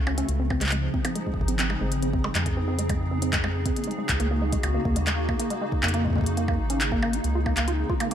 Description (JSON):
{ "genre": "IDM", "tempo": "138 BPM", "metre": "4/4", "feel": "straight", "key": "Db major", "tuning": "A4 = 440 Hz", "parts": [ { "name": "hollow soft pad", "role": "sustained chords", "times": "0.0-8.1 s", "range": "Db3 to A4", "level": "-30 LUFS", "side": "equal", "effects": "ensemble chorus, sidechain pumping" }, { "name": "round analog bass", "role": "bass", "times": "0.0-7.8 s", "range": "Ab1 to F2", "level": "-27 LUFS", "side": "equal", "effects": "tube saturation" }, { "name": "deep acid bass", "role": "arpeggios", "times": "0.1-8.1 s", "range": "Ab3 to F4", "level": "-30 LUFS", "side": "right 2 dB", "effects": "wide subtle chorus, tape echo" }, { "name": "glitchy drum kit", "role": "drums", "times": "0.1-8.1 s", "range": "handclaps, hi-hat, percussion blips", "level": "-30 LUFS", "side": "equal", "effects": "tape echo" }, { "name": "electronic kick drum", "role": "drums", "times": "0.5-8.0 s", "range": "none", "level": "-29 LUFS", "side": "equal", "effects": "none" } ], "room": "light reverb", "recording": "none", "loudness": "-23 LUFS", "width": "side -9 dB against mid", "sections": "0.0-8.1 A section", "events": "none", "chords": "0.3 Dbmaj9; 3.8 Ab9sus4/Db; 7.2 Bbm11" }